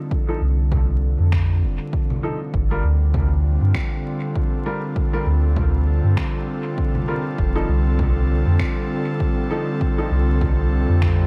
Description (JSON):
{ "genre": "ambient dub", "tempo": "99 BPM", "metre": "4/4", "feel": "swing 57% on 16ths", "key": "unclear", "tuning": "A4 = 439 Hz", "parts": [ { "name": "airy breathy pad", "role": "sustained chords", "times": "0.0-11.3 s", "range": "D3 to A4", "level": "-28 LUFS", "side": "equal", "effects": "chorus" }, { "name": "electronic kick drum", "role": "drums", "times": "0.1-11.2 s", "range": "none", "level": "-26 LUFS", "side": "equal", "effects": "none" }, { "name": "clear upright piano", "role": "stabs", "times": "0.3-10.1 s", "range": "F3 to Bb4", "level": "-32 LUFS", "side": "equal", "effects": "low-pass filter, dub echo" }, { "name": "soft dub sub bass", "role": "bass", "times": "0.4-11.3 s", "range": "F1 to G2", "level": "-20 LUFS", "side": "equal", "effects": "none" }, { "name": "electronic congas and finger snaps", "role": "drums", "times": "0.7-11.2 s", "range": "none", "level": "-34 LUFS", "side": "equal", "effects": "dub echo" } ], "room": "light reverb, digital ambience", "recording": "vinyl crackle", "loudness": "-20 LUFS", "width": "mono", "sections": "0.0-11.3 A section", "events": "none", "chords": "0.0 F; 2.5 G7(no3); 7.4 F" }